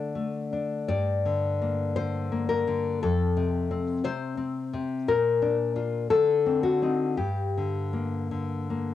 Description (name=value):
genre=romantic piece for solo classical guitar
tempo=57 BPM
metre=2/4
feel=uneven beats, rubato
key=G minor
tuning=A4 = 442 Hz
part: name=nylon-string guitar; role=solo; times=0.0-8.9 s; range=F2 to D5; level=-24 LUFS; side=left 3 dB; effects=cassette tape
room=moderate booth ambience, RT60 0.3 s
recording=home recording on cassette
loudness=-24 LUFS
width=side -12 dB against mid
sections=0.0-8.9 A section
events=none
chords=0.0 D5; 0.9 Gm; 3.0 F; 5.1 Bb; 6.1 D7b9; 7.2 Gm